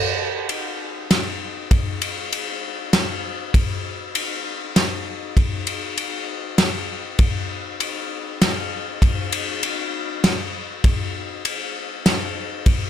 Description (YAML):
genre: rock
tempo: 99 BPM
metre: 3/4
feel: straight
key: none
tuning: none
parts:
  - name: loose indie drum kit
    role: drums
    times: 0.5-12.8 s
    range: kick drum, ride cymbal, snare drum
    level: -20 LUFS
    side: equal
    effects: none
room: little or no reverb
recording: none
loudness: -20 LUFS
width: side -10 dB against mid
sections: 0.0-12.9 A section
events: none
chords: none